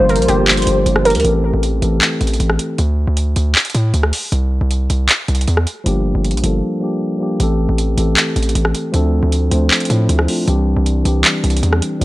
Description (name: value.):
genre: hip hop, trap.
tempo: 156 BPM.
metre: 4/4.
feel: half-time.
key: D minor.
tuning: A4 = 440 Hz.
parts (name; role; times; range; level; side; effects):
warbly dusty pluck; melody; 0.0-1.2 s; G4 to Bb4; -18 LUFS; equal; chorus, analog delay.
warm velvety synth lead; second line; 0.0-1.2 s; Bb4 to C5; -21 LUFS; equal; chorus, analog delay.
mellow tine electric piano; accompaniment; 0.0-2.8, 5.8-12.0 s; E3 to C5; -19 LUFS; left 1 dB; low-pass filter.
warbly tape-like pad; sustained chords; 0.0-1.2 s; D3 to F4; -28 LUFS; right 2 dB; none.
hard-hitting 808-style bass; bass; 0.0-12.0 s; G1 to A2; -15 LUFS; equal; none.
trap drum kit; drums; 0.1-12.0 s; handclaps, hi-hat, rim click; -17 LUFS; equal; vintage 12-bit sampler grit.
room: digital ambience.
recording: dry, gritty hardware recording, cassette tape.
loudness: -13 LUFS.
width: side -18 dB against mid.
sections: 0.0-1.2 A section; 1.2-12.0 B section.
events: filter sweep on tine electric piano 1.2-12.0; break 6.6-7.4.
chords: 0.0 Gm7; 1.2 Am7; 2.8 D5; 4.3 N.C.; 5.9 Gm7; 7.4 Am7; 8.9 Dm7; 10.5 Cadd9.